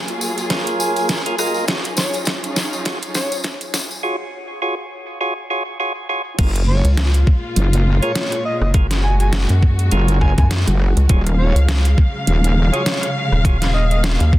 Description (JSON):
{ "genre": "glitch hop", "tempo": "102 BPM", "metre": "4/4", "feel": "swing 57% on 16ths", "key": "unclear", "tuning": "A4 = 440 Hz", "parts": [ { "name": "dark symphonic string section", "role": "sustained chords", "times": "0.0-14.4 s", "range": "Bb2 to F5", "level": "-25 LUFS", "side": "equal", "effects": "sidechain pumping" }, { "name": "dubstep drum kit", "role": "drums", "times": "0.1-14.3 s", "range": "crash cymbal, hi-hat, rim click, snare drum", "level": "-24 LUFS", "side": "equal", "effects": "none" }, { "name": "tambourine", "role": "percussion", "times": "0.1-4.0 s", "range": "none", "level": "-27 LUFS", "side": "left 2 dB", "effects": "none" }, { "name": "percussive tonewheel organ", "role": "stabs", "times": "0.5-13.6 s", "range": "F4 to Eb5", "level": "-24 LUFS", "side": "right 1 dB", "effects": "overdrive, stopped rotary speaker, sidechain pumping, low-pass filter, tape echo" }, { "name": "electronic kick drum", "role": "drums", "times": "0.5-14.4 s", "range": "none", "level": "-15 LUFS", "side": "equal", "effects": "high-pass filter on kick, high-pass filter on room" }, { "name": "overdriven harmonica", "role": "melody", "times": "0.8-14.0 s", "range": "Ab4 to Ab5", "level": "-27 LUFS", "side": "equal", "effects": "vintage 12-bit sampler grit, tape echo" }, { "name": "wobble bass", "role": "bass", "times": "6.4-12.7 s", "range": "Eb1 to Gb1", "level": "-15 LUFS", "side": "equal", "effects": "chorus, overdrive" }, { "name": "rubbery square bass", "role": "bass", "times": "6.8-14.4 s", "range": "Eb1 to Gb2", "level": "-15 LUFS", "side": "equal", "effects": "tube saturation" } ], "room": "digital ambience", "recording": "dense, heavily limited modern master, high-pass filter", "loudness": "-15 LUFS", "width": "side -16 dB against mid", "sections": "0.0-6.4 A section; 6.4-14.4 B section", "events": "build-up 0.0-6.4; drum fill 0.0-4.0; filter sweep on tonewheel organ 0.0-6.4; break 4.0-6.4; drop 6.4-14.4", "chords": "0.0 Gbmaj9; 1.7 Ebm11; 6.4 Gbmaj9; 11.1 Ebm11" }